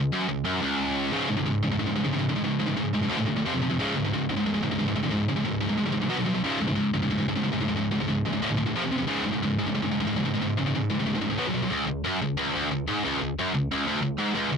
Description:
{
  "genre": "metal",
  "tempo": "181 BPM",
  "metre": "4/4",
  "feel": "straight",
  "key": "C# phrygian dominant",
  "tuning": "A4 = 439 Hz",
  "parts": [
    { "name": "scooped high-gain guitar", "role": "solo", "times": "0.0-14.6 s", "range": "C#2 to B3", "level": "-24 LUFS", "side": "equal", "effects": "distortion" }
  ],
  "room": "light reverb",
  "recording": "dry, close 1970s-style studio recording",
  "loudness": "-24 LUFS",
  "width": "side -6 dB against mid",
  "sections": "0.0-1.1 A section; 1.1-11.7 B section; 11.7-14.6 A section",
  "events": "none",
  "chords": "0.0 C#5; 3.1 D5; 3.4 F5; 3.8 C#5; 6.1 B5; 6.4 C#5; 8.4 D5; 8.7 F5; 9.1 C#5; 11.4 B5; 11.7 C#5"
}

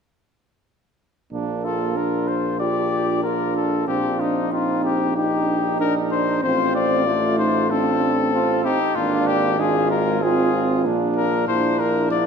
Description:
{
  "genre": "classical, brass quintet",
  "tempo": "94 BPM",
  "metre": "4/4",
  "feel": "straight",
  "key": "Bb major",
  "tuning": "A4 = 440 Hz",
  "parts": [
    { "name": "warm flugelhorn", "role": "second line", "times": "1.3-12.3 s", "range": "D4 to G4", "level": "-26 LUFS", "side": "right 7 dB", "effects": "none" },
    { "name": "warm French horn", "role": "accompaniment", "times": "1.3-12.3 s", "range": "Ab3 to Eb4", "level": "-26 LUFS", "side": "left 3 dB", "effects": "none" },
    { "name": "clear tuba", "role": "bass", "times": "1.3-12.3 s", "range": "Ab1 to Bb1", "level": "-26 LUFS", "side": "right 4 dB", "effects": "none" },
    { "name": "warm trumpet", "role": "melody", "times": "1.6-12.2 s", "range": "Eb4 to D5", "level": "-23 LUFS", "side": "left 7 dB", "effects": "none" },
    { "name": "warm euphonium", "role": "accompaniment", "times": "2.6-12.3 s", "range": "C4 to F4", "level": "-25 LUFS", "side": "right 3 dB", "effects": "none" }
  ],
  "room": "moderate church reverb, RT60 3.1 s",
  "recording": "none",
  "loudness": "-18 LUFS",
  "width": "side -6 dB against mid",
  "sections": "1.3-12.3 A section",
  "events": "none",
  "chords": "1.3 Bb; 3.9 Cm7/Bb; 6.4 F/A; 9.0 Bb7/Ab; 11.5 Bb"
}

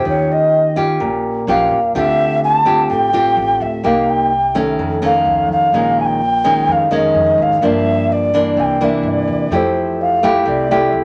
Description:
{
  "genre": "bossa nova",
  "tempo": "127 BPM",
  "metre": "4/4",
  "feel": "straight",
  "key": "F major",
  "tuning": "A4 = 441 Hz",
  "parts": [
    { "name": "alto ocarina", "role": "melody", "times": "0.0-10.9 s", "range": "C5 to A5", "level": "-17 LUFS", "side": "equal", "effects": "none" },
    { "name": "nylon-string guitar", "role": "accompaniment", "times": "0.0-11.0 s", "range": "F2 to G4", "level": "-19 LUFS", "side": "equal", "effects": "none" },
    { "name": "upright bass", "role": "bass", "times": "0.0-11.0 s", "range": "G1 to G2", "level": "-32 LUFS", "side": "equal", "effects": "none" }
  ],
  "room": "moderate studio reverb, RT60 0.6 s",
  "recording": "none",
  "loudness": "-15 LUFS",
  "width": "mono",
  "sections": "0.0-11.0 A section",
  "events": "none",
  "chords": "0.1 Eb9; 1.9 Dm11; 3.8 Cm7; 4.8 Faug7; 5.7 Bbm7; 7.6 Gm7; 8.6 C9; 9.5 Fmaj9"
}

